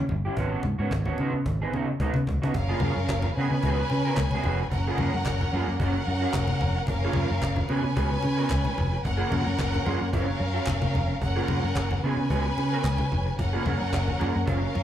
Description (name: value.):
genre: disco.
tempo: 111 BPM.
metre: 4/4.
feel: straight.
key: F# major.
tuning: A4 = 440 Hz.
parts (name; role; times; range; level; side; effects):
electric guitar through a small old amp; accompaniment; 0.0-14.8 s; F#3 to A#4; -32 LUFS; right 3 dB; analog chorus.
fingered electric bass; bass; 0.1-14.8 s; E#1 to C#3; -26 LUFS; equal; none.
congas; percussion; 0.1-14.8 s; none; -32 LUFS; left 3 dB; none.
cajon; drums; 0.4-14.6 s; none; -34 LUFS; equal; none.
warm studio violin section; second line; 2.5-14.8 s; C#4 to G#5; -30 LUFS; equal; none.
group handclap; percussion; 3.1-14.1 s; none; -40 LUFS; left 1 dB; slapback echo.
room: light reverb.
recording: live gig heard through the venue's PA, club reverb.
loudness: -24 LUFS.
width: side -11 dB against mid.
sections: 0.0-2.5 A section; 2.5-14.8 B section.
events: drum fill 2.0-2.5.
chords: 0.4 G#m7; 1.2 C#9sus4; 2.5 F#maj9; 3.4 C#7sus4; 4.7 F#maj9; 5.8 F#maj7; 6.9 F#maj9; 7.7 C#7sus4; 9.0 F#maj9; 10.1 F#maj7; 11.2 F#maj9; 12.0 C#7sus4; 13.4 F#maj9.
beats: | 0.37 0.91 1.46 2.00 | 2.54 3.09 3.63 4.17 | 4.71 5.26 5.80 6.34 | 6.88 7.42 7.96 8.51 | 9.05 9.59 10.13 10.68 | 11.22 11.76 12.30 12.85 | 13.39 13.93 14.47.